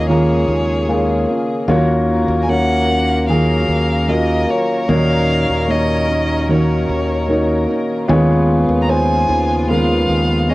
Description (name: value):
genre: pop ballad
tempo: 75 BPM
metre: 4/4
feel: straight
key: Eb minor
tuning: A4 = 441 Hz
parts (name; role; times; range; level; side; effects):
- rich violin; melody; 0.0-10.5 s; Db5 to Bb5; -21 LUFS; equal; cassette tape
- dark baby grand piano; accompaniment; 0.0-10.5 s; Bb2 to Db5; -18 LUFS; left 2 dB; none
- warm studio string section; sustained chords; 0.0-10.5 s; Db3 to Bb4; -26 LUFS; left 1 dB; none
- fingerpicked steel-string acoustic guitar; arpeggios; 0.0-10.5 s; Eb3 to Cb5; -21 LUFS; right 2 dB; none
- modern bright fingered electric bass; bass; 0.0-10.5 s; Eb2; -19 LUFS; equal; none
room: moderate studio ambience, RT60 0.5 s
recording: home recording on cassette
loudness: -13 LUFS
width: side -19 dB against mid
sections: 0.0-10.5 A section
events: none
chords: 0.0 Bbm7/Eb; 1.7 Gbmaj7/Eb; 4.9 Ebm7; 8.1 Db7/Eb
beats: 0.09 0.89 | 1.69 2.49 3.29 4.09 | 4.89 5.69 6.49 7.29 | 8.09 8.89 9.69 10.49